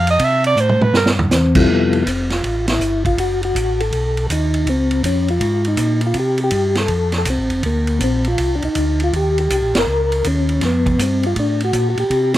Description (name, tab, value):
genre	soul jazz organ trio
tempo	161 BPM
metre	4/4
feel	swing 65% on 8ths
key	F major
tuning	A4 = 438 Hz
part	clear alto saxophone	melody	0.0-1.1 s	Bb4 to E5	-15 LUFS	right 3 dB	none
part	mellow tonewheel organ	bass	0.0-12.4 s	F1 to C3	-19 LUFS	equal	slow rotary speaker
part	vintage drum kit	drums	0.1-12.4 s	crash cymbal, hi-hat, kick drum, ride cymbal, snare drum, toms	-22 LUFS	right 2 dB	none
part	percussive tonewheel organ	melody	1.3-12.3 s	C3 to Bb4	-18 LUFS	left 1 dB	slow rotary speaker, chorus vibrato
room	little or no reverb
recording	close, detailed microphones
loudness	-15 LUFS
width	side -14 dB against mid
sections	0.0-1.7 A section; 1.7-12.4 B section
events	alto saxophone solo 0.0-1.7; drum fill 0.6-1.3; band accent 2.6, 9.7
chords	0.2 C; 1.7 Fmaj7; 3.2 Gbm; 3.9 B7; 4.7 Dbmaj9; 6.2 C5; 6.9 F; 7.6 Bbadd9; 9.1 Eb7; 10.6 F